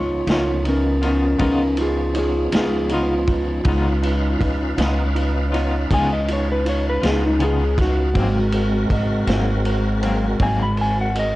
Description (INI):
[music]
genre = slow blues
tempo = 53 BPM (dotted quarters)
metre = 12/8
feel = straight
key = unclear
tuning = A4 = 441 Hz
[part]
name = clean lap steel guitar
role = melody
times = 0.0-11.4 s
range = Db4 to Cb6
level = -23 LUFS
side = equal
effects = none
[part]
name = warm upright piano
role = accompaniment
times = 0.0-11.4 s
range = Eb4 to Eb5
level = -28 LUFS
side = right 3 dB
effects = none
[part]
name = tonewheel organ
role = sustained chords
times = 0.0-11.4 s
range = F3 to F5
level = -27 LUFS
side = equal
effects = slow rotary speaker, overdrive, chorus vibrato
[part]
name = upright bass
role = bass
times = 0.0-11.4 s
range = Ab1 to Db2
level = -21 LUFS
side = equal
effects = none
[part]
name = semi-hollow electric guitar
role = accompaniment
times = 0.3-10.6 s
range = Ab2 to F4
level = -27 LUFS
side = left 2 dB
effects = tremolo
[part]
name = vintage drum kit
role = drums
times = 0.3-11.3 s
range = kick drum, ride cymbal, snare drum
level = -26 LUFS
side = equal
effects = none
[sound]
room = light reverb, small room ambience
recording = cassette tape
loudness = -17 LUFS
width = side -17 dB against mid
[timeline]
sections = 0.0-11.4 A section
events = electric slide guitar solo 0.0-11.4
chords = 0.0 Db9; 8.1 Ab9